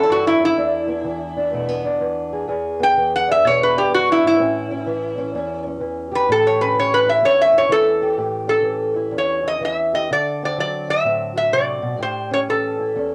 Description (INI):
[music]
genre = acoustic country blues, solo or duo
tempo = 126 BPM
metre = 4/4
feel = swing 64% on 8ths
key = A mixolydian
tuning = A4 = 439 Hz
[part]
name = metal-body resonator slide guitar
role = melody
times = 0.0-13.1 s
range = E4 to G5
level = -19 LUFS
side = equal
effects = cassette tape
[part]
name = fingerpicked old ladder-braced acoustic guitar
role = accompaniment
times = 0.0-13.1 s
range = E2 to A4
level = -26 LUFS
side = equal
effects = cassette tape
[sound]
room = moderate booth ambience, RT60 0.2 s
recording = home recording on cassette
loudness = -19 LUFS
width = mono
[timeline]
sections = 0.0-8.2 A section; 8.2-13.1 B section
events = resonator guitar played with a steel bar solo 0.0-8.2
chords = 0.0 A7(no3) (rootless); 0.6 E7; 4.4 A7; 10.1 D7; 12.0 A7